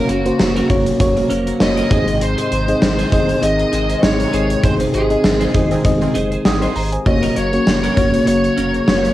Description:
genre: 1980s-style pop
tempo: 99 BPM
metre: 4/4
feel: swing 55% on 16ths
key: unclear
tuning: A4 = 440 Hz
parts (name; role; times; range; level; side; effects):
- smooth overdriven lead guitar; melody; 0.0-9.1 s; Gb4 to Eb5; -22 LUFS; equal; cassette tape
- warm studio violin section; second line; 0.0-9.1 s; Gb5 to Eb6; -32 LUFS; equal; tape echo
- FM electric piano with auto-pan; accompaniment; 0.0-9.1 s; Ab2 to Eb6; -18 LUFS; left 1 dB; none
- chorused pulse-width pad; sustained chords; 0.0-9.1 s; C3 to Bb3; -23 LUFS; equal; none
- twelve-string electric guitar; riff; 0.0-9.1 s; Db4 to C5; -27 LUFS; right 2 dB; ensemble chorus, tape echo
- saturated sub bass; bass; 0.1-9.1 s; F1 to Ab1; -23 LUFS; equal; none
- gated 80s drum kit; drums; 0.1-9.1 s; hi-hat, kick drum, snare drum, tambourine; -18 LUFS; equal; cassette tape
- funky polysynth comp; stabs; 5.7-6.7 s; Eb3 to Ab4; -24 LUFS; right 2 dB; chorus
room: wet studio reverb, RT60 0.6 s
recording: home recording on cassette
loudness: -13 LUFS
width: side -14 dB against mid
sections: 0.0-9.1 A section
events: band accent 4.6-7.1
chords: 0.0 Gb; 1.9 Ab; 7.1 Gb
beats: 0.40 1.00 1.61 | 2.21 2.82 3.42 4.03 | 4.64 5.24 5.85 6.46 | 7.06 7.67 8.27 8.88

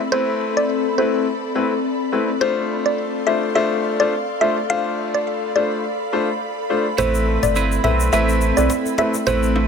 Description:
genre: dancehall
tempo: 105 BPM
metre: 4/4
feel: swing 56% on 16ths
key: A minor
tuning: A4 = 440 Hz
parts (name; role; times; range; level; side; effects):
- ethereal airy pad; sustained chords; 0.0-9.7 s; C4 to C6; -24 LUFS; left 3 dB; ensemble chorus, built-in reverb
- mallet-like synth pluck; melody; 0.1-9.5 s; C5 to F5; -22 LUFS; equal; chorus, tape echo
- clear baby grand piano; accompaniment; 0.1-9.7 s; A3 to C5; -22 LUFS; left 3 dB; none
- clean electric guitar; arpeggios; 7.0-9.7 s; A3 to B4; -23 LUFS; right 6 dB; spring reverb
- warm sub bass; bass; 7.0-9.7 s; G1 to B1; -21 LUFS; equal; none
- cajon; drums; 7.0-9.6 s; none; -30 LUFS; equal; none
- egg shaker and timbales; percussion; 7.0-9.7 s; none; -30 LUFS; left 6 dB; none
room: light reverb, small room ambience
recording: none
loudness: -17 LUFS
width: side -6 dB against mid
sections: 0.0-9.7 A section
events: none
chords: 0.0 Amadd9; 2.4 Dm7; 7.0 Amadd9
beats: | 0.13 0.70 1.27 1.84 | 2.41 2.98 3.55 4.13 | 4.70 5.27 5.84 6.41 | 6.98 7.55 8.13 8.70 | 9.27

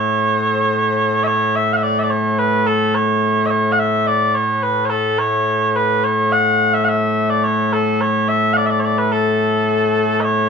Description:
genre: scottish traditional, Scottish pipe music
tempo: 107 BPM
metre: 4/4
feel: straight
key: A major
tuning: A4 = 436 Hz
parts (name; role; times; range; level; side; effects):
- mellow small bagpipes; solo; 0.0-10.5 s; A2 to F#5; -14 LUFS; equal; none
room: wet small room reverb, RT60 0.6 s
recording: band playing live in one room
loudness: -14 LUFS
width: side -6 dB against mid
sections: 0.0-10.2 A section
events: none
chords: none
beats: 0.15 0.71 | 1.27 1.83 2.39 2.96 | 3.52 4.08 4.64 5.20 | 5.76 6.32 6.88 7.44 | 8.00 8.56 9.12 9.68 | 10.24

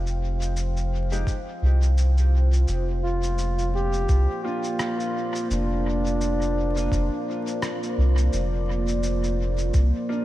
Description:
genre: ambient dub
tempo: 85 BPM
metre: 4/4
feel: swing 57% on 16ths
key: unclear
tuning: A4 = 440 Hz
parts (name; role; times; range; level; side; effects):
- deep dark ambient pad; sustained chords; 0.0-10.2 s; Bb3 to G5; -30 LUFS; equal; chorus, built-in reverb
- soft dub sub bass; bass; 0.0-9.9 s; F1 to C2; -22 LUFS; equal; none
- electronic cabasa and rim click; drums; 0.1-9.9 s; none; -36 LUFS; left 1 dB; dub echo
- warm upright piano; stabs; 1.1-10.2 s; Ab3 to G4; -40 LUFS; left 2 dB; wide subtle chorus, dub echo
- electronic kick drum; drums; 1.3-9.9 s; none; -27 LUFS; equal; none
- mellow trombone; melody; 3.0-7.9 s; D4 to G4; -30 LUFS; equal; dub echo
room: light reverb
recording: vinyl crackle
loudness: -22 LUFS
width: side -15 dB against mid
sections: 0.0-10.2 A section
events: none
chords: 0.0 Fsus2; 2.7 Bb/F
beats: 0.56 1.27 1.98 | 2.68 3.39 4.09 4.80 | 5.50 6.21 6.92 7.62 | 8.33 9.03 9.74

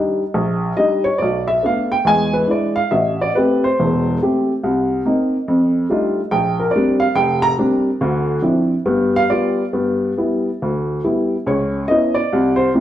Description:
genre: solo jazz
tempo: 141 BPM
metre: 4/4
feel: swing 67% on 8ths, rubato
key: unclear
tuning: A4 = 440 Hz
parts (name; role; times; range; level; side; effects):
- warm upright piano; solo; 0.0-12.8 s; E1 to Bb5; -15 LUFS; equal; none
room: moderate stone room reverb, RT60 0.9 s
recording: band playing live in one room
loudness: -15 LUFS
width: side -12 dB against mid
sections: 0.0-9.7 A section; 9.7-12.8 A section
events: upright piano solo 0.0-9.7, 9.7-12.8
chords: 0.0 Ebmaj7; 1.2 Bm7b5; 2.1 E7; 2.9 Am7; 4.6 Cm7; 5.5 F13; 6.3 Bb69; 8.0 Dm9; 8.9 G7; 9.7 G6; 11.5 C#m7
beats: 0.35 0.77 | 1.20 1.62 2.05 2.48 | 2.91 3.35 3.78 4.20 | 4.63 5.05 5.48 5.90 | 6.32 6.74 7.16 7.58 | 8.01 8.44 8.87 9.31 | 9.74 10.17 10.61 11.04 | 11.46 11.89 12.31 12.73

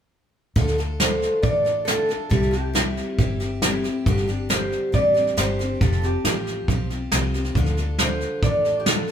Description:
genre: honky-tonk and classic country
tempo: 137 BPM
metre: 4/4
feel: straight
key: unclear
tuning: A4 = 440 Hz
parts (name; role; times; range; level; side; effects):
- picked steel-string acoustic guitar; accompaniment; 0.6-9.1 s; G2 to A4; -26 LUFS; left 1 dB; none
- vintage muted fingered electric bass; bass; 0.6-9.1 s; F1 to D2; -27 LUFS; left 1 dB; none
- soft brush drum kit; drums; 0.6-9.1 s; hi-hat, kick drum, snare drum; -22 LUFS; right 1 dB; none
- lap resonator guitar; melody; 1.0-9.1 s; G4 to D5; -24 LUFS; right 1 dB; none
room: light reverb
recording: band playing live in one room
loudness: -19 LUFS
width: side -8 dB against mid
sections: 0.6-9.1 A section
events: none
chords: 0.6 Dm; 2.3 C; 4.1 Gsus4; 5.8 Fsus2; 7.6 Dm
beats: | 0.56 1.00 1.44 1.88 | 2.31 2.75 3.19 3.62 | 4.06 4.50 4.94 5.37 | 5.81 6.25 6.68 7.12 | 7.55 7.99 8.43 8.86

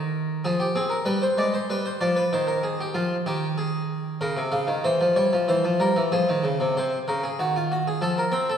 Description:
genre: classical, baroque-style two-part invention for harpsichord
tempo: 95 BPM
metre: 3/4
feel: straight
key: F minor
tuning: A4 = 440 Hz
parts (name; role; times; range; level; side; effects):
- harpsichord; solo; 0.0-8.6 s; C3 to F5; -22 LUFS; equal; none
room: wet scoring stage reverb, RT60 2.2 s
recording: heard from further back in the room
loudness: -22 LUFS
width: side -8 dB against mid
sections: 0.0-6.8 A section; 6.8-8.6 B section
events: none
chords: 0.5 Fmadd9; 1.1 G; 2.3 Cm/Eb; 3.0 Fm; 4.2 Dbmaj13/C; 4.9 C/E; 6.1 Fm; 6.8 Cdim; 8.0 F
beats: 0.46 | 1.08 1.71 2.34 | 2.97 3.60 4.23 | 4.86 5.49 6.12 | 6.75 7.38 8.02

